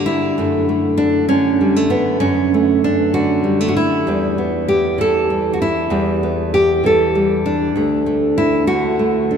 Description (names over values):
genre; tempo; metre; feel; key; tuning
folk, solo fingerstyle acoustic guitar; 65 BPM (dotted quarters); 6/8; straight; D major; A4 = 440 Hz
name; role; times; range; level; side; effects
nylon-string guitar; solo; 0.0-9.4 s; D2 to A4; -14 LUFS; equal; none
room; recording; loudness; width
wet cathedral reverb, RT60 5.2 s; in a vast, echoing space; -14 LUFS; side -7 dB against mid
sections
0.0-9.4 A section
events
none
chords
0.4 Dadd9/F#; 4.1 Em; 7.8 D